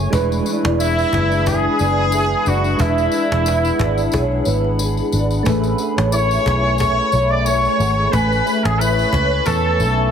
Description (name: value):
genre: indie pop, bedroom pop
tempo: 90 BPM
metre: 4/4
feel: swing 55% on 16ths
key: A major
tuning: A4 = 442 Hz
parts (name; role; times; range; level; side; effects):
- flamenco guitar; accompaniment; 0.0-10.1 s; E3 to C#5; -24 LUFS; left 4 dB; ensemble chorus, warbly pitch drift
- soft electric-piano-like synth keys; accompaniment; 0.0-10.1 s; G#3 to G#5; -26 LUFS; right 6 dB; chorus, tremolo, cassette tape
- warbly tape-like pad; sustained chords; 0.0-10.1 s; A3 to C#6; -26 LUFS; left 2 dB; chorus, built-in reverb
- vintage muted fingered electric bass; bass; 0.0-10.1 s; E1 to E2; -20 LUFS; equal; none
- vibraphone with soft mallets; second line; 0.1-10.0 s; A4 to G#5; -26 LUFS; right 8 dB; ensemble chorus, ping-pong delay
- cajon; drums; 0.1-10.1 s; none; -25 LUFS; equal; none
- tambourine; percussion; 0.1-10.0 s; none; -32 LUFS; left 8 dB; none
- warm trumpet; melody; 0.8-10.1 s; E4 to D5; -19 LUFS; left 1 dB; ensemble chorus, ping-pong delay
room: light reverb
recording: heavily compressed radio sound, multiband compression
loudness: -15 LUFS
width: side -8 dB against mid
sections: 0.0-10.1 A section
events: none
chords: 0.1 E7; 5.5 Amaj9